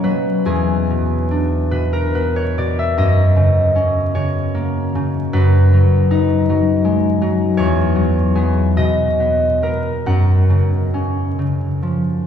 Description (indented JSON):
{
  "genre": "classical, solo harp piece",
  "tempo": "45-56 BPM (dotted quarters)",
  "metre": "6/8",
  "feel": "rubato",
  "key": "F# mixolydian",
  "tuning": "A4 = 445 Hz",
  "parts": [
    { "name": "concert harp", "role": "solo", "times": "0.0-12.3 s", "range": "E2 to F#5", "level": "-14 LUFS", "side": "equal", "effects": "none" }
  ],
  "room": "wet church reverb, RT60 4.2 s",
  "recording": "heard from further back in the room, vinyl crackle, studio ambience",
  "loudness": "-14 LUFS",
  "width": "side -8 dB against mid",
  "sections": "0.0-12.3 A section",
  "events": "none",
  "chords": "0.4 E9; 3.0 F#; 5.3 G#m7/F#; 7.6 E69; 8.8 Bmaj7; 10.0 F#maj7"
}